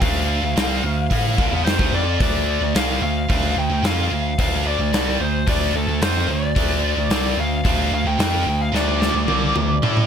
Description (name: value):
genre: hard rock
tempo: 110 BPM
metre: 4/4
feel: straight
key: D minor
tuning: A4 = 440 Hz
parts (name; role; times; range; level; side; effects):
- biting lead guitar; melody; 0.0-10.1 s; A4 to G5; -24 LUFS; left 2 dB; overdrive
- high-gain distorted guitar; riff; 0.0-10.1 s; C3 to A4; -26 LUFS; left 13 dB; distortion
- high-gain distorted guitar; riff; 0.0-10.1 s; C3 to A4; -24 LUFS; right 14 dB; distortion
- growling FM bass; bass; 0.0-10.1 s; C2 to A2; -23 LUFS; equal; none
- gated 80s drum kit; drums; 0.0-10.1 s; hi-hat, kick drum, snare drum, toms; -22 LUFS; equal; none
room: small room ambience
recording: none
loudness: -17 LUFS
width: side -8 dB against mid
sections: 0.0-10.1 A section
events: drum fill 8.7-10.1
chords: 0.0 Dm